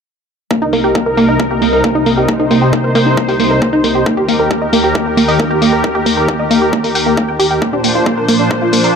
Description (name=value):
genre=uplifting trance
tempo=135 BPM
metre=4/4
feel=straight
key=C minor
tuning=A4 = 438 Hz
part: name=supersaw pad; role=sustained chords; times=0.5-9.0 s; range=C2 to C5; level=-15 LUFS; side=left 1 dB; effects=sidechain pumping, low-pass filter
part: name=wide unison pluck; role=arpeggios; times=0.5-8.9 s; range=Bb3 to G5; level=-13 LUFS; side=right 1 dB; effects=sidechain pumping, ping-pong delay
part: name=electronic kick drum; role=drums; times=0.5-8.6 s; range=none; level=-20 LUFS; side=left 1 dB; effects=high-pass filter on kick, high-pass filter on room
part: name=electronic hi-hat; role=drums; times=0.7-8.9 s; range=none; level=-20 LUFS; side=left 4 dB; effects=overdrive, low-pass filter on hats
room=moderate lush hall reverb, RT60 1.8 s, digital ambience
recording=none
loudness=-10 LUFS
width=side -6 dB against mid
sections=0.5-9.0 A section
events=filter sweep on synth pluck 0.5-9.0; filter sweep on supersaw synth 0.5-9.0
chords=0.5 Cm7; 4.1 Eb; 7.6 Bbadd9